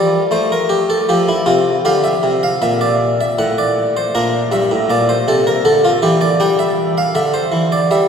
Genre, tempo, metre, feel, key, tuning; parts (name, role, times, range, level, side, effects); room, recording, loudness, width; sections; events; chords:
classical, baroque-style suite movement for harpsichord; 79 BPM; 3/4; rubato; A4 = 440 Hz
harpsichord; solo; 0.0-8.1 s; G2 to G5; -12 LUFS; equal
wet cathedral reverb, RT60 4.8 s; recorded in a church or concert hall; -13 LUFS; side -7 dB against mid
0.0-8.1 A section
0.0 F; 1.9 Gm; 3.4 N.C.; 4.1 Gm; 6.4 D9sus4